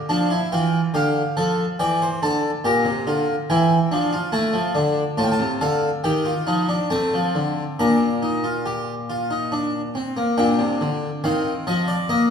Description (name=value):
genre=classical, baroque-style 3-part fugue for harpsichord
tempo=70 BPM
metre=3/4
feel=straight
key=Bb major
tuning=A4 = 443 Hz
part: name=harpsichord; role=solo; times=0.0-12.3 s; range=A2 to Bb5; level=-19 LUFS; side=equal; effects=none
room=wet recital hall reverb, RT60 1.4 s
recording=heard from further back in the room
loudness=-19 LUFS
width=side -7 dB against mid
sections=0.0-10.4 A section; 10.4-12.3 B section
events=none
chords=0.1 Dm; 1.8 C/E; 2.7 Bb; 4.4 A5; 5.2 Dm/A; 6.1 Ebmaj9; 6.9 F; 7.8 Bb; 10.4 Bb (rootless)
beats=| 0.11 0.96 1.80 | 2.66 3.50 4.35 | 5.20 6.06 6.93 | 7.80 8.67 9.54 | 10.41 11.26 12.12